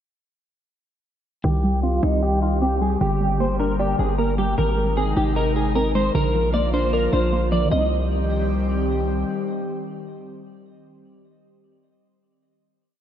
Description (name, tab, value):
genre	hip hop, trap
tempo	153 BPM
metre	4/4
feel	half-time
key	C minor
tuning	A4 = 440 Hz
part	semi-hollow electric guitar	melody	1.4-8.9 s	Eb4 to Eb5	-24 LUFS	equal	ensemble chorus, low-pass filter, tape echo
part	soft round pluck	accompaniment	1.4-11.0 s	D3 to Eb5	-26 LUFS	right 2 dB	chorus, low-pass filter
part	airy breathy pad	sustained chords	1.4-10.9 s	C3 to G4	-26 LUFS	left 1 dB	chorus, low-pass filter
part	hard-hitting 808-style bass	bass	1.4-9.2 s	G1 to C2	-23 LUFS	equal	none
room	moderate lush hall reverb, RT60 2.4 s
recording	dreamy mix soaked in reverb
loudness	-19 LUFS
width	side -10 dB against mid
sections	1.4-7.7 breakdown; 7.7-10.9 final chord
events	filter sweep 1.4-7.7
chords	1.4 Cm; 3.0 Gm; 4.6 Ab; 6.1 Bb; 7.7 Cm